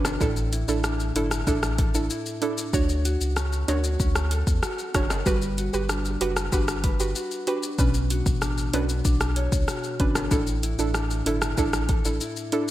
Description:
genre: dancehall.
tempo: 95 BPM.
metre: 4/4.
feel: straight.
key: unclear.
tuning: A4 = 439 Hz.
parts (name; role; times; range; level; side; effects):
soft round pluck; accompaniment; 0.0-12.7 s; C#4 to C#5; -28 LUFS; right 3 dB; chorus.
mellow electric guitar; arpeggios; 0.0-12.7 s; A2 to C#5; -30 LUFS; left 1 dB; digital delay.
warm sub bass; bass; 0.0-12.2 s; F#1 to E2; -27 LUFS; equal; none.
afro-pop drum kit; drums; 0.0-12.7 s; hi-hat, kick drum, rim click, shaker; -26 LUFS; equal; gated reverb.
timbales and maracas; percussion; 0.1-12.7 s; none; -36 LUFS; left 5 dB; none.
room: light reverb, digital ambience.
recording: bright 1980s-style digital production.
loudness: -22 LUFS.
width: side -14 dB against mid.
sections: 0.0-12.7 A section.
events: none.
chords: 0.2 Asus4; 2.7 Dmaj7; 5.3 Gmaj7; 7.8 Bmadd9; 10.3 Asus4.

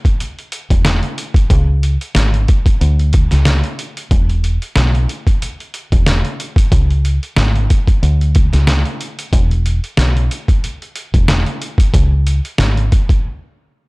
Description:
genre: hip hop, boom-bap hip-hop.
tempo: 92 BPM.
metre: 4/4.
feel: swing 57% on 16ths.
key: unclear.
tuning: A4 = 439 Hz.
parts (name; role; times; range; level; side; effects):
trip hop sampler-style drum kit; drums; 0.0-13.2 s; hi-hat, kick drum, snare drum; -14 LUFS; equal; none.
deep dub fingered electric bass; bass; 0.7-12.9 s; E1 to D2; -13 LUFS; equal; transformer saturation.
room: little or no reverb.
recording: dry, gritty hardware recording, transformer saturation, cassette tape.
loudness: -12 LUFS.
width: side -26 dB against mid.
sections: 0.0-13.9 A section.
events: break 13.2-13.9.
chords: none.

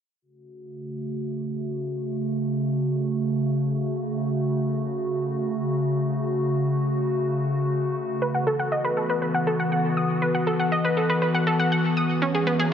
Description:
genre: techno.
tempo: 120 BPM.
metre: 4/4.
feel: straight.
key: F# minor.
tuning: A4 = 439 Hz.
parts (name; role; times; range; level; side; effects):
evolving wavetable pad; sustained chords; 0.7-12.7 s; C#3 to G#4; -24 LUFS; equal; chorus, built-in reverb.
analog pluck; arpeggios; 8.2-12.7 s; B3 to D#6; -23 LUFS; equal; chorus, vintage 12-bit sampler grit, digital delay.
riser; sound effects; 12.5-12.7 s; none; -38 LUFS; right 1 dB; none.
room: wet lush hall reverb, RT60 2.6 s.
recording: dense, heavily limited modern master, low-pass filter.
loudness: -22 LUFS.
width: side -8 dB against mid.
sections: 0.2-12.7 A section.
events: filter sweep 0.2-12.7.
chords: 0.2 F#m; 8.2 Bsus4; 12.2 C#m.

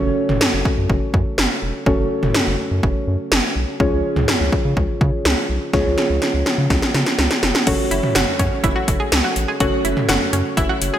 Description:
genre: synth-pop.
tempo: 124 BPM.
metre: 4/4.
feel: straight.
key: F# minor.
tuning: A4 = 443 Hz.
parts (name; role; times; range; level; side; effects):
muted felt-like synth keys; accompaniment; 0.0-11.0 s; C#4 to C#5; -22 LUFS; equal; chorus.
round analog bass; bass; 0.0-10.9 s; E1 to C#3; -22 LUFS; equal; none.
80s electronic pad drums; drums; 0.3-10.9 s; crash cymbal, hi-hat, kick drum, snare drum, toms; -19 LUFS; equal; gated reverb on snare and toms, overdrive.
analog pluck; arpeggios; 7.7-11.0 s; C#4 to G#4; -23 LUFS; right 1 dB; chorus, digital delay.
room: moderate lush hall reverb, RT60 1.7 s.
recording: bright 1980s-style digital production.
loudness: -16 LUFS.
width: side -11 dB against mid.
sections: 0.0-7.7 A section; 7.7-11.0 B section.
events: drum fill 5.7-7.7.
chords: 0.0 F#m; 3.8 C#; 7.7 F#m7.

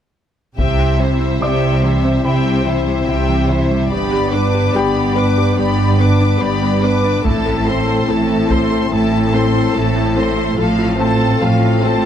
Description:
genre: cinematic, hybrid orchestral and electronic film score.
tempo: 72 BPM.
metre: 4/4.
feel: straight.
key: unclear.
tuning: A4 = 444 Hz.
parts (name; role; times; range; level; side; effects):
warm symphonic violin section; second line; 0.6-12.1 s; A4 to D6; -21 LUFS; left 4 dB; none.
dark symphonic viola section; accompaniment; 0.6-12.1 s; A3 to B4; -21 LUFS; equal; none.
dark French horn section; sustained chords; 0.6-12.1 s; B3 to F4; -21 LUFS; left 7 dB; none.
thumb-piano-like synth pluck; arpeggios; 0.6-12.0 s; C3 to A4; -23 LUFS; right 3 dB; chorus, tape echo.
rich symphonic cello section; bass; 0.6-12.1 s; G2 to C3; -19 LUFS; right 2 dB; none.
warm symphonic double bass section; bass; 0.6-12.1 s; G1 to C2; -20 LUFS; right 3 dB; none.
taiko ensemble; drums; 0.6-2.2, 7.2-8.9 s; none; -22 LUFS; equal; none.
felt-muted upright piano; texture; 1.4-12.1 s; G4 to D6; -29 LUFS; left 3 dB; none.
room: light reverb.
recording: close, detailed microphones.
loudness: -13 LUFS.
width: side -9 dB against mid.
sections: 0.6-12.1 A section.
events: build-up 0.6-12.1.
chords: 0.6 C; 3.9 G; 7.3 Am; 10.6 F/A.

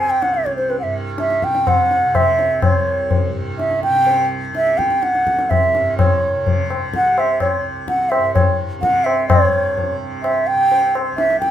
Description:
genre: indian classical, Hindustani.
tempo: 126 BPM.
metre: 7/4.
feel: straight.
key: unclear.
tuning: A4 = 440 Hz.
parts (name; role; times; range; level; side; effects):
hollow bansuri; melody; 0.0-11.5 s; B4 to Ab5; -16 LUFS; right 1 dB; none.
tanpura; drone; 0.0-11.5 s; C2 to C3; -26 LUFS; right 1 dB; none.
tabla; percussion; 0.2-11.5 s; none; -20 LUFS; left 3 dB; none.
room: light reverb.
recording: minimal, uncompressed stereo recording.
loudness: -15 LUFS.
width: side -10 dB against mid.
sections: 0.0-9.3 A section; 9.3-11.5 B section.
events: none.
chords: none.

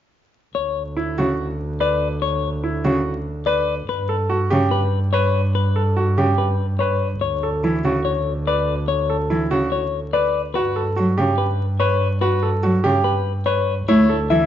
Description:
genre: classical, minimalist pattern music.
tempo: 144 BPM.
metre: 4/4.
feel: straight.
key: D major.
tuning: A4 = 440 Hz.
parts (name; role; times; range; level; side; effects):
semi-hollow electric guitar; melody; 0.5-14.5 s; B4 to E5; -23 LUFS; left 9 dB; none.
clear double bass; bass; 0.6-14.5 s; D2 to G2; -23 LUFS; right 1 dB; none.
bright grand piano; arpeggios; 1.0-14.5 s; E4 to B4; -22 LUFS; right 3 dB; none.
warm cello; accompaniment; 1.2-14.5 s; C#3 to A3; -21 LUFS; equal; none.
room: moderate large studio reverb, RT60 1.3 s.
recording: vinyl crackle, nothing above 7.5 kHz.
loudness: -18 LUFS.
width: side -10 dB against mid.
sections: 0.6-14.5 A section.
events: none.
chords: 0.6 Dadd9; 3.9 Gmaj9; 7.2 Dmaj9; 10.6 Gmaj9; 13.9 Dmaj7sus2.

